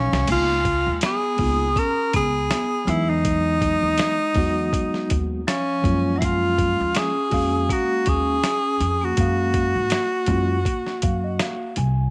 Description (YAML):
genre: hip hop, jazz-hop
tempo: 81 BPM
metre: 4/4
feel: swing 58% on 16ths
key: F# major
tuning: A4 = 438 Hz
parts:
  - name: clear tenor saxophone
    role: melody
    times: 0.0-11.8 s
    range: C#4 to A#4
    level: -25 LUFS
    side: equal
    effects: none
  - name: vibraphone with hard mallets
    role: second line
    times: 0.0-11.8 s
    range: E#3 to C#4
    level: -33 LUFS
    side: equal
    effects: none
  - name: upright bass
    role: bass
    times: 0.0-12.1 s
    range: B1 to G#2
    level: -27 LUFS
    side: equal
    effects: none
  - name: boom bap sampler-style drum kit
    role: drums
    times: 0.1-12.0 s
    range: crash cymbal, hi-hat, kick drum, snare drum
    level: -28 LUFS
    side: equal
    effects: none
  - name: mellow tine electric piano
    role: accompaniment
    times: 0.3-12.1 s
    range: E3 to G#5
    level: -29 LUFS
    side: equal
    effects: none
room: light reverb, small room ambience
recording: none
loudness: -22 LUFS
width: mono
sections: 0.3-12.1 A section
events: drum fill 0.0; tine electric piano fill 10.7-12.1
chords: 0.3 C#13; 2.9 Emaj7; 5.8 F#maj9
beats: | 0.29 1.03 1.77 2.51 | 3.25 3.99 4.73 5.47 | 6.21 6.95 7.70 8.44 | 9.18 9.92 10.66 11.40